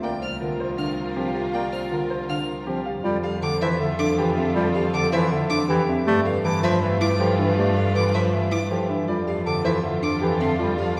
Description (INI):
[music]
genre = classical, minimalist pattern music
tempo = 159 BPM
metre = 4/4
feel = straight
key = F lydian from 3.0 s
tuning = A4 = 444 Hz
[part]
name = bright concert grand piano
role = melody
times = 0.0-11.0 s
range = G4 to F5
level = -32 LUFS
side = equal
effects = none
[part]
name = mellow French horn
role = second line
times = 0.0-11.0 s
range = F4 to B4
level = -32 LUFS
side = equal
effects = none
[part]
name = clear bass clarinet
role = accompaniment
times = 0.0-11.0 s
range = D3 to Bb3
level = -29 LUFS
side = equal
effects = none
[part]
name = warm symphonic violin section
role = sustained chords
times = 0.0-11.0 s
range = F4 to B4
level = -35 LUFS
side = equal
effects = none
[part]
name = buzzing marimba with soft mallets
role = arpeggios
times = 0.0-11.0 s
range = C4 to C5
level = -30 LUFS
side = equal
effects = none
[part]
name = rich violin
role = arpeggios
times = 0.0-11.0 s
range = E5 to F6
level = -34 LUFS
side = equal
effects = none
[part]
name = clear cello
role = bass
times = 0.0-11.0 s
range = C2 to G2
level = -30 LUFS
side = equal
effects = none
[sound]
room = wet cathedral reverb, RT60 6.2 s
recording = recorded in a church or concert hall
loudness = -23 LUFS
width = mono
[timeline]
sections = 0.0-3.0 A section; 3.0-11.0 B section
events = none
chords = 0.0 C7sus4; 3.0 F69; 6.1 G13; 9.1 F69